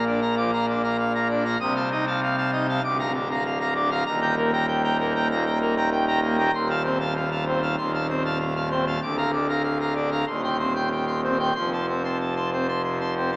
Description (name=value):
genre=classical, organ toccata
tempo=97 BPM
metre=4/4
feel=straight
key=unclear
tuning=A4 = 440 Hz
part: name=pipe organ, full organ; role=solo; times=0.0-13.4 s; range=D1 to Eb6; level=-21 LUFS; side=equal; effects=none
room=wet church reverb, RT60 2.7 s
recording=small speaker sound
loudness=-21 LUFS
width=side -24 dB against mid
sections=0.0-13.4 A section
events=none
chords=0.0 Bb; 1.6 F7/C; 2.8 Bb/D; 4.1 Eb; 6.5 F7/Eb; 9.0 Bb/D; 10.3 Cm/Eb; 11.6 F